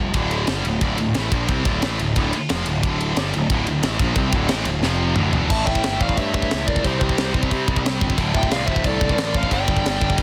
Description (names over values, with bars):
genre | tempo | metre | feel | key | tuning
heavy metal | 179 BPM | 4/4 | straight | D minor | A4 = 439 Hz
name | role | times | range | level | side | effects
heavy high-gain guitar | riff | 0.0-10.2 s | D2 to C4 | -26 LUFS | equal | distortion
fuzz picked electric bass | bass | 0.0-10.2 s | D1 to C3 | -26 LUFS | equal | overdrive
tight metal drum kit | drums | 0.1-10.2 s | crash cymbal, kick drum, ride cymbal, snare drum, toms | -25 LUFS | equal | none
smooth overdriven lead guitar | melody | 5.5-10.2 s | C5 to A5 | -28 LUFS | equal | tape echo
dark smooth lead guitar | second line | 5.5-10.2 s | G4 to E5 | -32 LUFS | equal | overdrive
room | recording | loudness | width
light reverb | dense, heavily limited modern master | -21 LUFS | mono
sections
0.2-5.5 A section; 5.5-10.2 B section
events
drum fill 4.8-5.5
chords
0.2 Dm; 4.8 F5; 5.2 D5; 5.5 A; 6.8 C5; 8.2 D5; 9.5 G5